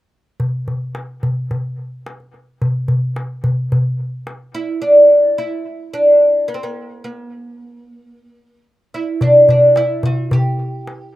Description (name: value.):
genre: Arabic maqam ensemble.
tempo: 109 BPM.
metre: 4/4.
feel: straight.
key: G maqam rast.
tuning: A4 = 438 Hz.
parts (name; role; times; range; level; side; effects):
darbuka; percussion; 0.4-4.6, 9.2-11.0 s; none; -18 LUFS; equal; none.
oud; melody; 4.5-11.2 s; Bb3+50c to G4; -12 LUFS; equal; none.
room: light reverb.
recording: recorded outdoors, with no room sound.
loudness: -13 LUFS.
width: side -14 dB against mid.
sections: 0.4-4.8 A section; 4.8-11.2 B section.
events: none.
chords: none.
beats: | 0.41 0.96 1.51 2.06 | 2.61 3.17 3.72 4.27 | 4.82 5.37 5.92 6.47 | 7.02 7.57 8.12 8.67 | 9.22 9.77 10.31 10.86.